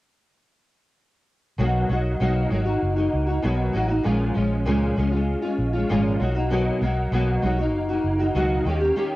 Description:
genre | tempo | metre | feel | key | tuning
indie pop | 98 BPM | 4/4 | straight | B lydian | A4 = 442 Hz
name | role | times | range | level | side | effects
nylon-string guitar | accompaniment | 1.6-9.2 s | A#2 to G4 | -22 LUFS | equal | ensemble chorus, warbly pitch drift, cassette tape
vintage muted fingered electric bass | bass | 1.6-8.9 s | F#1 to D#2 | -24 LUFS | equal | none
room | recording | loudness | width
light reverb, small room ambience | home recording on cassette | -20 LUFS | side -17 dB against mid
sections
1.6-9.2 A section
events
break 9.0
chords
1.6 Bmaj7; 4.0 A#m7; 6.2 Bmaj7; 8.7 D#7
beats
| 1.59 2.20 2.82 3.43 | 4.05 4.66 5.28 5.89 | 6.51 7.12 7.74 8.35 | 8.97

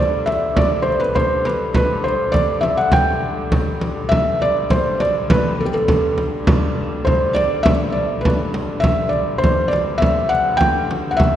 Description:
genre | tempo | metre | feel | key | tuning
medieval dance | 102 BPM | 2/4 | straight | G major | A4 = 440 Hz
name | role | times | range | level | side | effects
felt-muted upright piano | melody | 0.0-11.4 s | G4 to G5 | -18 LUFS | equal | none
dark hurdy-gurdy | drone | 0.0-11.4 s | G2 to D3 | -27 LUFS | left 1 dB | none
frame drum | percussion | 0.3-11.4 s | none | -19 LUFS | equal | none
room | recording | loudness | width
wet concert hall reverb, RT60 2.5 s | heard from further back in the room, nothing above 10.7 kHz | -15 LUFS | side -11 dB against mid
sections
0.0-4.1 A section; 4.1-11.4 B section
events
none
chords
none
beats
| 0.56 1.15 | 1.75 2.34 | 2.93 3.52 | 4.11 4.70 | 5.29 5.88 | 6.47 7.07 | 7.66 8.24 | 8.84 9.42 | 10.01 10.60 | 11.19

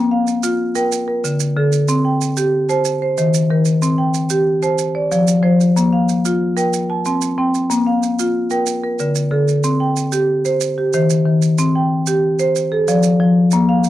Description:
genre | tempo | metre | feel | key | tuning
southern african traditional, mbira-style interlocking cycle | 124 BPM (dotted quarters) | 12/8 | straight | C equiheptatonic | A4 = 442 Hz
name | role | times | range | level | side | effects
marimba with medium hard mallets | arpeggios | 0.0-13.9 s | D3-29c to A5-43c | -14 LUFS | equal | none
maracas | percussion | 0.3-13.9 s | none | -27 LUFS | right 14 dB | none
room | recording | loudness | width
light reverb | dry, close 1970s-style studio recording | -14 LUFS | side -14 dB against mid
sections
0.0-9.6 A section; 9.6-13.9 B section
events
none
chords
0.0 Bb5; 0.9 D5; 1.9 C5; 2.9 Eb5; 3.8 C5; 4.8 F; 5.8 Bb5; 6.7 C5; 7.7 Bb5; 8.7 D5; 9.6 C5; 10.6 Eb; 11.6 C5; 12.6 F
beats
0.43 0.92 1.40 | 1.89 2.37 2.85 3.34 | 3.82 4.31 4.79 5.28 | 5.76 6.25 6.73 7.22 | 7.71 8.19 8.68 9.16 | 9.64 10.13 10.61 11.10 | 11.58 12.07 12.55 13.04 | 13.52

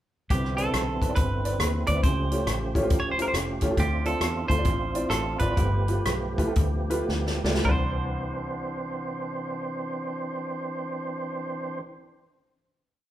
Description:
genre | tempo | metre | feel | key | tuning
uptempo gospel | 104-139 BPM | 4/4 | swing 64% on 8ths | C major | A4 = 440 Hz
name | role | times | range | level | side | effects
semi-hollow electric guitar | melody | 0.3-11.8 s | G4 to D5 | -31 LUFS | right 3 dB | none
warm upright piano | accompaniment | 0.3-11.8 s | C2 to B5 | -32 LUFS | left 1 dB | none
percussive tonewheel organ | sustained chords | 0.3-11.8 s | D3 to C5 | -32 LUFS | right 2 dB | overdrive, chorus vibrato, stopped rotary speaker
fingered electric bass | bass | 0.3-11.8 s | E#1 to E2 | -29 LUFS | equal | none
natural country drum kit | drums | 0.3-7.8 s | hi-hat, kick drum, rim click, snare drum, toms | -27 LUFS | equal | none
room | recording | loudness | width
moderate large studio reverb, RT60 1.2 s | band playing live in one room | -24 LUFS | side -12 dB against mid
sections
0.3-7.7 breakdown; 7.7-12.3 final chord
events
slowing down 3.8-7.7; drum fill 7.1-7.7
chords
0.3 Cmaj9; 2.0 A7alt; 3.8 Dm9; 5.6 G9; 7.7 Cmaj9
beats
| 0.30 0.74 1.17 1.60 | 2.04 2.47 2.90 3.34 | 3.77 4.21 4.65 5.11 | 5.57 6.05 6.56 7.09 | 7.65 8.23 8.81 9.39 | 9.97 10.55 11.12 11.70

